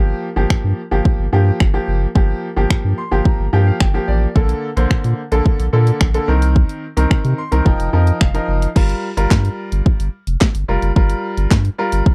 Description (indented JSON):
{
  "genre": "dance-pop",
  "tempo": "109 BPM",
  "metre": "4/4",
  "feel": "straight",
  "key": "G minor",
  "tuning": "A4 = 439 Hz",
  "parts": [
    { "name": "bright grand piano", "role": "accompaniment", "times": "0.0-12.1 s", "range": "D3 to C6", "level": "-23 LUFS", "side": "equal", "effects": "sidechain pumping" },
    { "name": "saturated sub bass", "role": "bass", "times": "0.0-12.0 s", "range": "F1 to C3", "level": "-19 LUFS", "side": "equal", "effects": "sidechain pumping" },
    { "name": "house drum kit", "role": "drums", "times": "0.5-12.1 s", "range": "crash cymbal, finger snaps, handclaps, hi-hat, kick drum, snare drum", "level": "-17 LUFS", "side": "equal", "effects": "none" }
  ],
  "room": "little or no reverb",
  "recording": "dry, close 1970s-style studio recording",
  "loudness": "-16 LUFS",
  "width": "mono",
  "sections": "0.0-8.8 A section; 8.8-12.1 B section",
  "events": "grand piano fill 2.7-4.4, 7.1-8.8",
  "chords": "0.0 Gm7; 4.4 Bbmaj7; 6.3 Cm7; 7.7 F7sus4; 8.8 Gm7",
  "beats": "0.50 1.05 1.60 | 2.15 2.71 3.25 3.81 | 4.36 4.91 5.46 6.01 | 6.56 7.11 7.66 8.21 | 8.76 9.31 9.86 10.41 | 10.96 11.51 12.06"
}